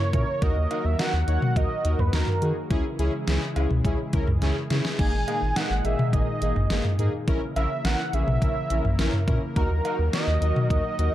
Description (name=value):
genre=synth-pop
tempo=105 BPM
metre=4/4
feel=straight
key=unclear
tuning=A4 = 439 Hz
part: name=wide unison lead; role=melody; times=0.0-11.1 s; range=A#4 to G#5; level=-30 LUFS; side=right 2 dB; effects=tape echo
part: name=warm analog pad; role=sustained chords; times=0.0-11.1 s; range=A#2 to A#4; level=-32 LUFS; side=left 2 dB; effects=chorus
part: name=analog synth brass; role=accompaniment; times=0.1-11.1 s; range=A#3 to C#5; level=-31 LUFS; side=left 1 dB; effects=chorus
part: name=round analog bass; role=bass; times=0.1-11.1 s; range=G#1 to D#3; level=-25 LUFS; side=equal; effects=none
part: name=pop drum kit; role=drums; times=0.1-11.1 s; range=cowbell, crash cymbal, hi-hat, kick drum, snare drum, toms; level=-26 LUFS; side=equal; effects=overdrive
room=light reverb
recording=dark, warm production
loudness=-22 LUFS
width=side -13 dB against mid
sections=0.0-11.1 A section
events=drum fill 4.4-5.0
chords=0.4 D#m; 2.7 C#m; 5.0 G#sus2; 7.3 A#dim; 9.6 D#m